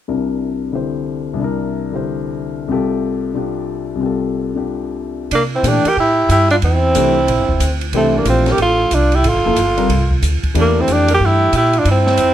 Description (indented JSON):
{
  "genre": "modal jazz",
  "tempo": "183 BPM",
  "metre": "4/4",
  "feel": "swing 64% on 8ths",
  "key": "C mixolydian",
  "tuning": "A4 = 440 Hz",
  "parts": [
    { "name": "dark grand piano", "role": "accompaniment", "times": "0.1-11.5 s", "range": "C2 to C5", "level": "-20 LUFS", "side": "left 4 dB", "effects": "none" },
    { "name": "breathy tenor saxophone", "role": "melody", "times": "5.3-12.3 s", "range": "A3 to G4", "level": "-15 LUFS", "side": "equal", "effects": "none" },
    { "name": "breathy alto saxophone", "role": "second line", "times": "5.3-12.3 s", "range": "C4 to Bb4", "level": "-21 LUFS", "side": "right 7 dB", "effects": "none" },
    { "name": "upright bass", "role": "bass", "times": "5.3-12.3 s", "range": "E1 to C3", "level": "-17 LUFS", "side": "equal", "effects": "none" },
    { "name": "open jazz drum kit", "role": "drums", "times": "5.3-12.3 s", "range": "hi-hat, kick drum, ride cymbal, snare drum", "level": "-24 LUFS", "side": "right 2 dB", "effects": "none" }
  ],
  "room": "light reverb",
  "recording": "none",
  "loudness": "-14 LUFS",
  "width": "side -11 dB against mid",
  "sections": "0.1-5.3 A section; 5.3-12.3 B section",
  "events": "none",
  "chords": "0.1 C9; 2.7 Fadd9/C; 5.3 C9; 7.9 Fadd9; 10.6 C9",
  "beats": "| 0.08 0.41 0.73 1.06 | 1.39 1.72 2.04 2.37 | 2.70 3.03 3.35 3.68 | 4.01 4.34 4.66 4.99 | 5.32 5.65 5.97 6.30 | 6.63 6.96 7.28 7.61 | 7.94 8.26 8.59 8.92 | 9.24 9.57 9.90 10.23 | 10.55 10.88 11.21 11.53 | 11.86 12.19"
}